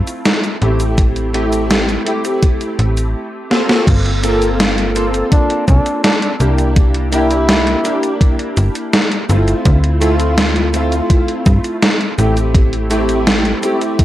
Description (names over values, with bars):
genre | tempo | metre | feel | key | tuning
vaporwave | 83 BPM | 4/4 | straight | D minor | A4 = 436 Hz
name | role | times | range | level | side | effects
clear electric grand piano | accompaniment | 0.0-14.0 s | A3 to A4 | -17 LUFS | equal | ensemble chorus, tape echo
gated 80s digital drum machine | drums | 0.1-14.0 s | cabasa, crash cymbal, hi-hat, snare drum | -16 LUFS | equal | gated reverb, gated reverb snare, small room ambience
slap-like FM bass | bass | 0.6-13.5 s | G1 to G2 | -16 LUFS | equal | none
electronic kick drum | drums | 1.0-14.0 s | none | -12 LUFS | equal | small room ambience
warm flugelhorn | melody | 5.3-8.1 s | D4 to E4 | -20 LUFS | equal | tape echo
room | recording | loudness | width
light reverb | dry, gritty hardware recording | -12 LUFS | side -14 dB against mid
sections
0.0-3.9 A section; 3.9-14.0 B section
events
drum fill 3.5-3.9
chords
0.0 Dm9 (rootless); 1.0 Am7; 3.9 Gm11; 6.4 C9; 9.7 Dm9; 12.5 Am7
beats
0.26 | 0.98 1.70 2.42 3.15 | 3.87 4.59 5.32 6.04 | 6.76 7.49 8.21 8.93 | 9.65 10.38 11.10 11.82 | 12.54 13.27 13.99